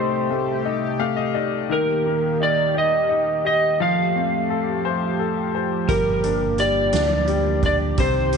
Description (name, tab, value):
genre	six-eight pop ballad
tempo	57 BPM (dotted quarters)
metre	6/8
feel	straight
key	unclear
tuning	A4 = 441 Hz
part	electric slide guitar	melody	0.0-8.4 s	Bb4 to F5	-21 LUFS	right 1 dB	none
part	clear upright piano	accompaniment	0.0-8.4 s	C3 to F5	-25 LUFS	left 12 dB	none
part	chorused pulse-width pad	sustained chords	0.0-8.4 s	C3 to G4	-26 LUFS	right 3 dB	none
part	deep dub fingered electric bass	bass	5.9-8.4 s	G1 to D2	-25 LUFS	right 1 dB	none
part	soft-mallet drum kit	drums	5.9-8.4 s	hi-hat, kick drum, snare drum	-26 LUFS	right 4 dB	none
room	light reverb, small room ambience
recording	1960s-style stereo, nothing above 10.8 kHz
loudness	-18 LUFS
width	side -5 dB against mid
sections	0.0-8.4 A section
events	upright piano fill 0.7-1.7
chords	0.0 Am7b5; 1.7 Eb; 3.8 Fadd9; 5.9 Gm7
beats	0.65 | 1.70 2.75 | 3.79 4.84 | 5.89 6.93 | 7.98